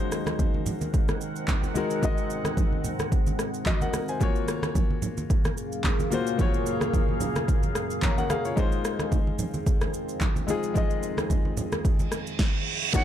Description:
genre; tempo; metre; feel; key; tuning
amapiano; 110 BPM; 4/4; swing 55% on 16ths; unclear; A4 = 441 Hz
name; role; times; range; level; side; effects
warm concert grand piano; accompaniment; 0.0-13.0 s; Ab3 to Bb5; -31 LUFS; left 5 dB; none
deep dark ambient pad; sustained chords; 0.0-13.0 s; F2 to Gb5; -32 LUFS; right 1 dB; chorus, built-in reverb, sidechain pumping
deep house drum kit; drums; 0.1-13.0 s; handclaps, kick drum, rim click, shaker, snare drum; -25 LUFS; equal; none
congas; percussion; 0.3-13.0 s; none; -33 LUFS; right 3 dB; none
reverse cymbal and downlifter; sound effects; 12.2-13.0 s; none; -29 LUFS; right 8 dB; none
bright silver concert flute; melody; 12.9-13.0 s; Gb5; -26 LUFS; right 1 dB; none
room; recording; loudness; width
small room ambience; dark, warm production; -24 LUFS; side -10 dB against mid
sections
0.0-12.9 A section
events
reverse cymbal 12.2-12.9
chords
0.0 Ab7; 4.2 Gbmaj7; 8.6 Fm7

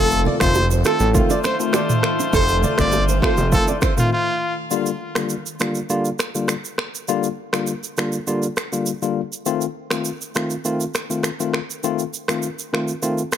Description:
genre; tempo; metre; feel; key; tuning
afrobeats; 101 BPM; 4/4; straight; G minor; A4 = 440 Hz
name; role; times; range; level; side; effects
brilliant trumpet; melody; 0.0-4.5 s; F4 to D5; -23 LUFS; equal; digital delay
barky tine electric piano; accompaniment; 0.0-13.2 s; D3 to F4; -23 LUFS; moving between left 10 dB and right 1 dB; auto-pan
glassy FM pad; sustained chords; 0.2-4.7 s; Eb3 to F4; -29 LUFS; left 2 dB; ensemble chorus, built-in reverb
flamenco guitar; riff; 0.0-3.9 s; A4 to D5; -25 LUFS; right 4 dB; digital delay
fat analog bass; bass; 0.0-3.6 s; F1 to A1; -19 LUFS; equal; none
afro-pop drum kit; drums; 0.1-13.4 s; finger snaps, kick drum, rim click, shaker, toms; -23 LUFS; right 1 dB; none
congas and bongos; percussion; 0.3-4.0 s; none; -27 LUFS; right 5 dB; none
clear horn section; second line; 1.1-4.4 s; A3 to C5; -26 LUFS; left 4 dB; none
room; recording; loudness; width
light reverb, small room reverb; none; -18 LUFS; side -10 dB against mid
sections
0.0-4.7 A section; 4.7-13.4 B section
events
break 4.1-4.7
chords
0.0 F7; 4.7 Gm7; 9.5 F7

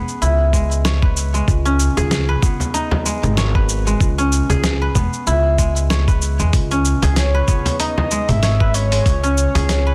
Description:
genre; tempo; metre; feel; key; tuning
organic downtempo; 95 BPM; 4/4; swing 56% on 16ths; C# minor; A4 = 440 Hz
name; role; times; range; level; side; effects
guzheng; arpeggios; 0.0-9.9 s; G#3 to C#5; -24 LUFS; equal; delay
dusty soul sampler-style drum kit; drums; 0.1-9.8 s; cabasa, congas, hi-hat, snare drum; -25 LUFS; equal; overdrive
upright bass; bass; 0.2-9.9 s; G#1 to E2; -20 LUFS; equal; sidechain pumping
electronic kick drum; drums; 0.5-9.2 s; none; -19 LUFS; equal; overdrive
frame drum; percussion; 2.0-9.7 s; none; -25 LUFS; equal; none
breathy flute-like synth lead; melody; 7.2-9.9 s; C#5 to E5; -25 LUFS; equal; analog chorus, delay
room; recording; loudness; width
light reverb, small room ambience; dense, heavily limited modern master; -17 LUFS; mono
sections
0.0-9.9 A section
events
none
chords
0.0 C#m7; 1.5 B6/C#; 4.0 C#m7; 6.5 G#m/C#; 9.1 C#7(no3)

